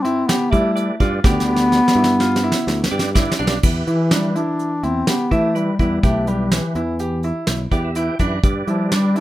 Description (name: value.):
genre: progressive instrumental, band music in an uneven meter.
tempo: 125 BPM.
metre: 5/4.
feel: straight.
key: E phrygian.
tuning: A4 = 440 Hz.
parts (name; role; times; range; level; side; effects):
warm bass clarinet; melody; 0.0-9.2 s; E3 to D4; -19 LUFS; left 1 dB; plate reverb.
bright baby grand piano; arpeggios; 0.0-9.2 s; D4 to G4; -25 LUFS; right 2 dB; plate reverb.
picked electric bass; bass; 0.0-9.2 s; B1 to G3; -22 LUFS; equal; none.
soft brush drum kit; drums; 0.0-9.2 s; crash cymbal, hi-hat, kick drum, snare drum; -19 LUFS; equal; none.
percussive tonewheel organ; accompaniment; 0.5-9.2 s; E3 to B5; -27 LUFS; right 2 dB; overdrive, chorus vibrato, stopped rotary speaker, plate reverb.
room: light reverb.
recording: rough home demo mix.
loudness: -16 LUFS.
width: side -15 dB against mid.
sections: 0.0-3.6 A section; 3.6-9.2 B section.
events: drum fill 1.2-3.6; tonewheel organ fill 7.5-8.4.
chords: 0.0 G; 3.6 Em; 8.4 G.